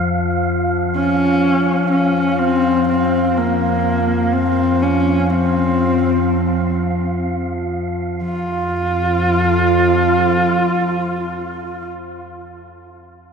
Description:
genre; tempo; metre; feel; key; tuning
ambient; free time; none; none; unclear; A4 = 442 Hz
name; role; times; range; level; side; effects
analog drone; drone; 0.0-11.9 s; F2 to F3; -19 LUFS; left 1 dB; chorus
wind-like tuned noise texture; texture; 0.0-8.3 s; F5; -25 LUFS; right 5 dB; built-in reverb
dark horsehead fiddle; melody; 1.0-11.9 s; Bb3 to F4; -18 LUFS; left 1 dB; ping-pong delay
room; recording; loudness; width
wet cathedral reverb, RT60 5.4 s; dark, warm production; -15 LUFS; side -6 dB against mid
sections
0.0-8.2 A section; 8.2-12.1 B section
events
filter sweep on synth drone 0.0-8.2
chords
none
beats
free time

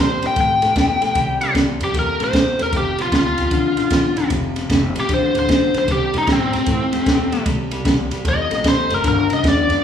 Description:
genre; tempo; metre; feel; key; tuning
electric blues shuffle; 152 BPM; 4/4; swing 65% on 8ths; unclear; A4 = 437 Hz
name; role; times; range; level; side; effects
biting lead guitar; melody; 0.0-9.8 s; C4 to G5; -19 LUFS; equal; overdrive
electric guitar through a small old amp; riff; 0.0-9.8 s; F2 to A3; -22 LUFS; left 5 dB; none
upright bass; bass; 0.0-9.8 s; F1 to Bb2; -26 LUFS; equal; none
compact cocktail drum kit; drums; 0.2-9.8 s; kick drum, ride cymbal, snare drum; -20 LUFS; right 1 dB; none
room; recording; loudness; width
moderate large studio reverb, RT60 1.4 s; band playing live in one room, small room ambience; -15 LUFS; side -8 dB against mid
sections
0.0-9.8 A section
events
lead electric guitar solo 0.0-9.8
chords
0.0 C; 2.7 F; 5.9 C; 9.0 G5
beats
0.37 0.76 | 1.16 1.55 1.94 2.34 | 2.73 3.12 3.52 3.91 | 4.30 4.70 5.09 5.49 | 5.88 6.28 6.67 7.07 | 7.46 7.86 8.25 8.65 | 9.04 9.44 9.83

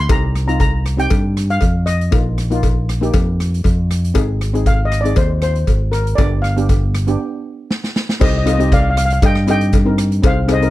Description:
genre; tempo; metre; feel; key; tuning
calypso; 118 BPM; 4/4; straight; C minor; A4 = 440 Hz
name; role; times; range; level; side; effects
steel pan; melody; 0.0-10.7 s; Bb4 to Bb5; -21 LUFS; left 1 dB; none
fingered electric bass; bass; 0.0-10.7 s; G1 to G2; -17 LUFS; equal; none
steel pan; accompaniment; 0.1-10.7 s; Bb3 to Bb4; -22 LUFS; equal; none
street-band drum kit; drums; 0.1-10.7 s; crash cymbal, hi-hat, kick drum, rim click, snare drum; -18 LUFS; equal; none
cowbell; percussion; 0.1-10.6 s; none; -25 LUFS; left 12 dB; none
room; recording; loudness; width
little or no reverb; dry, close 1970s-style studio recording; -14 LUFS; side -16 dB against mid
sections
0.0-8.2 A section; 8.2-10.7 B section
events
break 7.2-8.2; drum fill 7.7-8.2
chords
0.1 Cm; 2.1 Bbsus4; 4.2 Ab; 6.2 G7; 8.2 Cm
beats
| 0.09 0.60 1.10 1.61 | 2.12 2.63 3.13 3.64 | 4.15 4.66 5.17 5.67 | 6.18 6.69 7.20 7.70 | 8.21 8.72 9.22 9.73 | 10.24

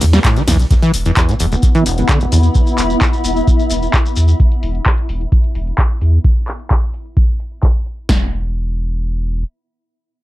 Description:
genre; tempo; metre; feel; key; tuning
acid house; 130 BPM; 4/4; straight; unclear; A4 = 436 Hz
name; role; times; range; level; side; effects
acid bass, saw; riff; 0.0-2.4 s; E1 to G3; -16 LUFS; equal; tube saturation, analog chorus, tape echo
saturated sub bass; bass; 0.0-9.4 s; E1 to E2; -15 LUFS; equal; sidechain pumping
punchy analog drum machine; drums; 0.0-8.1 s; handclaps, hi-hat, ride cymbal, snare drum; -20 LUFS; equal; overdrive, low-pass filter on hats, low-pass filter on toms, low-pass filter on cymbals, low-pass filter on snare
shekere; percussion; 0.0-4.4 s; none; -28 LUFS; left 4 dB; none
electro analog drum machine; drums; 0.2-8.2 s; kick drum, snare drum; -14 LUFS; equal; overdrive
granular cloud pad; texture; 1.4-4.4 s; B3 to B5; -21 LUFS; left 2 dB; built-in reverb, sidechain pumping
room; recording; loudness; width
little or no reverb; none; -12 LUFS; side -16 dB against mid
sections
0.7-8.1 A section; 8.1-10.2 B section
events
filter sweep on drum 0.7-8.1; filter sweep on acid bass 0.7-2.6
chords
0.0 E5; 8.1 N.C.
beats
0.24 | 0.71 1.17 1.63 2.09 | 2.55 3.01 3.48 3.94 | 4.40 4.86 5.32 5.78 | 6.24 6.71 7.17 7.63 | 8.09 8.55 9.01

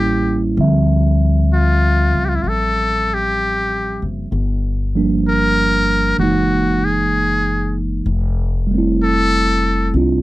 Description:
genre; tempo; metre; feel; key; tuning
jazz ballad; 64 BPM; 4/4; swing 68% on 8ths; D minor; A4 = 440 Hz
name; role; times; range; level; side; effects
trumpet with metal mute; melody; 0.0-9.9 s; E4 to Bb4; -18 LUFS; left 2 dB; none
mellow tine electric piano; accompaniment; 0.0-10.2 s; E3 to E5; -18 LUFS; right 3 dB; none
upright bass; bass; 0.0-10.2 s; F1 to D2; -18 LUFS; left 1 dB; none
room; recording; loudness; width
light reverb; dry, close 1970s-style studio recording; -14 LUFS; side -17 dB against mid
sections
0.6-10.2 A section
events
none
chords
0.0 A7b9; 0.6 Dm11; 4.3 Gm7; 6.2 F#13; 8.1 Fmaj7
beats
| 0.58 1.51 2.45 3.38 | 4.32 5.25 6.19 7.13 | 8.06 9.00 9.93

